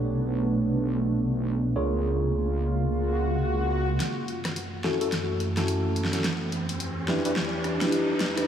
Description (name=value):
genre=glitch hop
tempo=107 BPM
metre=4/4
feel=swing 60% on 16ths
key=unclear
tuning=A4 = 441 Hz
part: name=warbly tape-like pad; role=sustained chords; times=0.0-8.5 s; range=E2 to G4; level=-29 LUFS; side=right 2 dB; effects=chorus, built-in reverb
part: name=mellow tine electric piano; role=stabs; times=0.0-8.4 s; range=C#4 to C#5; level=-30 LUFS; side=equal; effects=phaser, low-pass filter, diffuse ambient delay
part: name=wobble bass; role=bass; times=0.0-4.0 s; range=B1 to C#2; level=-27 LUFS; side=equal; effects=chorus, tube saturation
part: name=swell and riser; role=sound effects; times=3.1-8.5 s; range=none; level=-34 LUFS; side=equal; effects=none
part: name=pop drum kit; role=drums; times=4.0-8.5 s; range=hi-hat, rim click, snare drum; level=-30 LUFS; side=equal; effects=studio reverb
room=wet huge ambient reverb, RT60 4.2 s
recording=dreamy mix soaked in reverb, high-pass filter, small room ambience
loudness=-24 LUFS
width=side -9 dB against mid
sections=0.0-4.0 A section; 4.0-8.5 B section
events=swell 3.1-4.0; build-up 4.0-8.5; drum fill 4.0-8.5; riser 4.0-8.5; filter sweep on tine electric piano 4.0-8.5; filter sweep on ambient pad 4.0-8.5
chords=0.0 Bm9; 1.8 C#6; 4.0 F#m7; 6.2 Em7